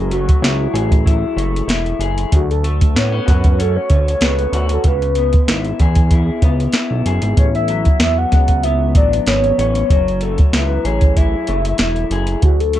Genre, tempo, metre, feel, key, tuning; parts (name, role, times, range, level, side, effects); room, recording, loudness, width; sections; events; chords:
indie pop, bedroom pop; 95 BPM; 4/4; swing 55% on 16ths; A4 = 440 Hz
soft octave-layered synth lead; melody; 0.0-12.8 s; F#4 to F#5; -20 LUFS; equal; phaser, wide subtle chorus, analog delay, plate reverb
electric guitar through a small old amp; accompaniment; 0.0-12.8 s; C#3 to G#4; -22 LUFS; left 4 dB; lush chorus, warbly pitch drift, plate reverb
fat analog bass; bass; 0.0-12.8 s; E1 to A2; -18 LUFS; equal
soft vintage rhythm box; drums; 0.1-12.8 s; hi-hat, kick drum, snare drum; -14 LUFS; equal
light reverb; dark, warm production; -13 LUFS; side -12 dB against mid
0.0-12.8 A section
0.0 F#m9; 2.3 Dmaj7; 4.9 C#m7; 7.4 A69; 9.9 F#m9